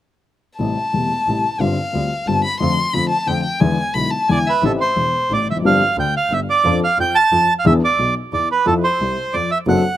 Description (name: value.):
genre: tango.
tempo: 179 BPM.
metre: 3/4.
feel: rubato.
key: A minor.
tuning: A4 = 440 Hz.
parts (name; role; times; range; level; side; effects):
warm violin; second line; 0.6-4.6 s; E5 to C6; -20 LUFS; left 2 dB; none.
dark upright piano; accompaniment; 0.6-9.8 s; E1 to A4; -19 LUFS; left 3 dB; none.
clear double bass; bass; 0.6-9.8 s; E1 to F2; -26 LUFS; right 2 dB; none.
bandoneon; melody; 4.3-10.0 s; A4 to A5; -16 LUFS; right 3 dB; slapback echo.
room: little or no reverb.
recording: recorded outdoors, with no room sound.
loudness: -15 LUFS.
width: side -12 dB against mid.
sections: 0.6-4.6 A section; 4.6-10.0 B section.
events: none.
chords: 0.6 Am7; 1.6 G7sus4; 2.6 Dm7/F; 3.6 E7; 4.6 Am7; 5.6 G7sus4; 6.6 Dm7/F; 7.6 E7; 8.7 Fmaj7.